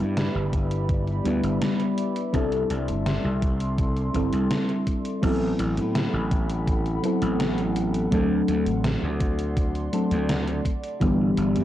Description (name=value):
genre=vaporwave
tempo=83 BPM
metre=4/4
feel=straight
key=A dorian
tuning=A4 = 441 Hz
part: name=mellow FM electric piano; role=accompaniment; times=0.0-11.6 s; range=E3 to B4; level=-25 LUFS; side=left 1 dB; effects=phaser, lush chorus, analog delay
part: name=warbly tape-like pad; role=sustained chords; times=0.0-11.6 s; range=G4 to C6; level=-35 LUFS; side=left 1 dB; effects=chorus, built-in reverb, phaser
part: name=gritty slap bass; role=bass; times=0.0-11.6 s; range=G1 to A2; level=-27 LUFS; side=equal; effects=overdrive
part: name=gated 80s digital drum machine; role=drums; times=0.2-11.6 s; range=crash cymbal, hi-hat, snare drum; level=-30 LUFS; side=equal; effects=gated reverb, gated reverb snare, overdrive
part: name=electronic kick drum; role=drums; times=0.5-11.2 s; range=none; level=-25 LUFS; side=equal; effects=overdrive
room=little or no reverb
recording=dry, gritty hardware recording, transformer saturation, cassette tape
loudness=-22 LUFS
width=side -12 dB against mid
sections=0.0-5.2 A section; 5.2-11.6 B section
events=none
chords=0.0 G6; 2.3 C69; 5.2 Am69; 8.1 D7; 10.7 G6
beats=0.17 0.89 1.62 | 2.34 3.06 3.79 4.51 | 5.23 5.95 6.68 7.40 | 8.12 8.85 9.57 10.29 | 11.01